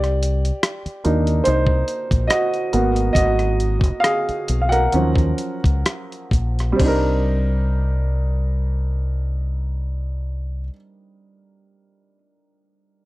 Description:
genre	R&B, neo-soul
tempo	62-73 BPM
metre	4/4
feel	swing 54% on 16ths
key	unclear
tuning	A4 = 441 Hz
part	warm upright piano	accompaniment	0.0-13.1 s	F3 to Gb5	-21 LUFS	right 1 dB	none
part	deep dub fingered electric bass	bass	0.0-10.7 s	Ab1 to Eb2	-20 LUFS	equal	none
part	dusty soul sampler-style drum kit	drums	0.0-7.0 s	crash cymbal, hi-hat, kick drum, rim click	-21 LUFS	equal	none
room	little or no reverb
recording	dry, close 1970s-style studio recording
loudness	-18 LUFS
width	side -18 dB against mid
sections	0.0-6.8 A section; 6.8-10.7 B section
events	slowing down 0.0-6.8; upright piano solo 0.0-6.8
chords	0.0 Cm9; 2.7 Abm9; 4.9 Ebm9; 6.8 Cm9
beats	0.62 1.45 2.29 | 3.15 4.03 4.92 5.84 | 6.79 7.76 8.73 9.70

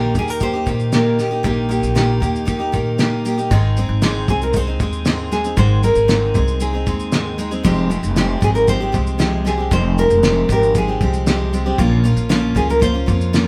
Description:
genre	acoustic pop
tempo	116 BPM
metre	4/4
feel	straight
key	Ab major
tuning	A4 = 439 Hz
part	picked steel-string acoustic guitar	accompaniment	0.0-13.5 s	F2 to Ab4	-22 LUFS	equal	none
part	upright bass	bass	0.0-13.5 s	F1 to Bb2	-22 LUFS	equal	none
part	cloth-damped thuddy drum kit	drums	0.1-13.5 s	kick drum, shaker, snare drum	-23 LUFS	equal	none
part	nylon-string guitar	melody	0.2-13.3 s	G4 to C5	-22 LUFS	equal	none
room	moderate studio reverb, RT60 0.7 s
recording	band playing live in one room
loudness	-17 LUFS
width	mono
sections	0.0-3.5 A section; 3.5-13.5 A section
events	none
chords	0.0 Eb/Bb; 3.5 Ab; 7.6 Fmadd9; 11.8 Bbm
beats	0.41 0.93 | 1.44 1.96 2.48 2.99 | 3.51 4.03 4.54 5.06 | 5.58 6.09 6.61 7.13 | 7.64 8.16 8.68 9.20 | 9.71 10.23 10.75 11.27 | 11.78 12.30 12.82 13.34

